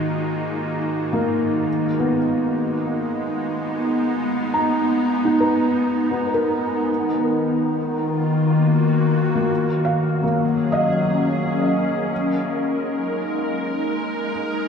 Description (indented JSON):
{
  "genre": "ambient",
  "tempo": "free time",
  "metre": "none",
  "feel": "none",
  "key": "G# dorian",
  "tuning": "A4 = 440 Hz",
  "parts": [
    { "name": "evolving wavetable pad", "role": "sustained chords", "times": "0.0-14.7 s", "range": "G#2 to A#4", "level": "-21 LUFS", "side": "left 1 dB", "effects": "ensemble chorus, built-in reverb" },
    { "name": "felt-muted upright piano", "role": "arpeggios", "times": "0.0-14.7 s", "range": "A#3 to A#5", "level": "-24 LUFS", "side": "left 1 dB", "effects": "diffuse ambient delay" },
    { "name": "bowed-like drone", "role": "drone", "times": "0.0-7.0 s", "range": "G#3 to D#4", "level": "-27 LUFS", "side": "right 3 dB", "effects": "built-in reverb" }
  ],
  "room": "wet cathedral reverb, RT60 4.8 s",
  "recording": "none",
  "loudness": "-19 LUFS",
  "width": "side -6 dB against mid",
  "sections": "0.0-6.9 A section; 6.9-14.7 B section",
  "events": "fade-in on ambient pad 0.0-6.9",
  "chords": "0.0 D#madd9/G#; 1.7 G#m7; 6.9 D#m; 9.5 F#maj7; 12.1 G#5",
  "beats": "free time"
}